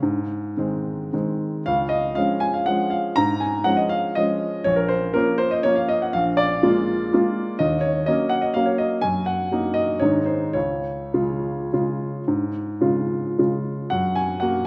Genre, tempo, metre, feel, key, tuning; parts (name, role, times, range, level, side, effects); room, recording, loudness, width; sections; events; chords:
classical, piano waltz; 101-131 BPM; 3/4; rubato; Db major; A4 = 440 Hz
warm grand piano; solo; 0.0-14.7 s; Bb1 to Bb5; -22 LUFS; equal
wet recital hall reverb, RT60 1.4 s; -22 LUFS; mono
0.0-13.9 A section
0.0 Ab; 1.7 Db; 4.7 Bbm; 6.1 Bb7; 7.6 Ebm7; 9.0 Ebm/Gb; 10.0 Ab; 10.6 Db; 13.9 F#